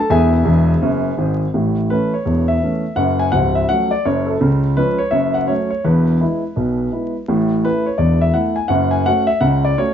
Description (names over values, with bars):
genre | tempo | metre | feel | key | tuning
jazz, stride piano | 168 BPM | 4/4 | swing 63% on 8ths | A major | A4 = 440 Hz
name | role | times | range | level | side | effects
warm grand piano | solo | 0.0-9.9 s | C#1 to A5 | -14 LUFS | equal | none
room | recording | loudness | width
moderate studio reverb, RT60 0.7 s | vinyl crackle, nothing above 7.6 kHz | -14 LUFS | side -9 dB against mid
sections
0.0-1.5 A section; 1.5-9.9 B section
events
grand piano fill 0.5-1.5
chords
0.1 E; 1.5 A; 3.0 F#m; 4.4 C#; 5.1 F#m; 5.8 E; 7.3 A5; 8.7 F#m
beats
| 0.12 0.48 0.83 1.19 | 1.55 1.91 2.27 2.62 | 2.98 3.34 3.70 4.06 | 4.42 4.78 5.13 5.49 | 5.85 6.21 6.57 6.92 | 7.28 7.64 8.00 8.36 | 8.71 9.07 9.43 9.79